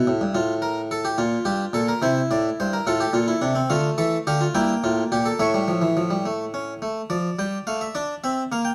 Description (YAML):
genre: classical, baroque-style 4-part fugue for harpsichord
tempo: 71 BPM (dotted quarters)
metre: 6/8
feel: straight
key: F major, D minor from 3.7 s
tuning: A4 = 440 Hz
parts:
  - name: harpsichord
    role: solo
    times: 0.0-8.7 s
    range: G2 to G5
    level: -23 LUFS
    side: equal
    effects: none
room: light reverb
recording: close, detailed microphones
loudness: -23 LUFS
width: mono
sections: 0.0-3.7 A section; 3.7-7.1 B section; 7.1-8.7 C section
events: none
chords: 0.3 F/A; 1.2 Gm7; 2.0 C; 2.9 F/A; 3.7 Dm; 4.6 Edim/G; 5.4 A; 7.1 Dm/F; 8.0 Em7b5